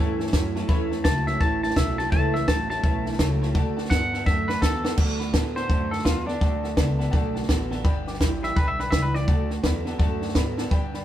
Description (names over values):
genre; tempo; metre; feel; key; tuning
rockabilly; 168 BPM; 4/4; swing 63% on 8ths; D major; A4 = 441 Hz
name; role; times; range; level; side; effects
twangy electric guitar; melody; 0.0-9.5 s; D4 to A5; -28 LUFS; left 1 dB; none
picked steel-string acoustic guitar; accompaniment; 0.0-11.0 s; A2 to B4; -34 LUFS; left 2 dB; none
warm upright piano; accompaniment; 0.0-11.0 s; C#5 to D6; -38 LUFS; left 5 dB; none
electric guitar through a small old amp; riff; 0.0-11.0 s; G2 to B3; -30 LUFS; right 3 dB; none
upright bass; bass; 0.0-11.0 s; G1 to A2; -29 LUFS; left 1 dB; none
compact cocktail drum kit; drums; 0.2-11.0 s; crash cymbal, hi-hat, kick drum, snare drum; -24 LUFS; equal; none
room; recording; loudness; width
light reverb; band playing live in one room; -21 LUFS; side -12 dB against mid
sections
0.0-5.0 A section; 5.0-11.0 A section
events
drum fill 4.3-5.0, 10.5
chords
0.0 A; 3.5 D; 7.8 G; 9.3 D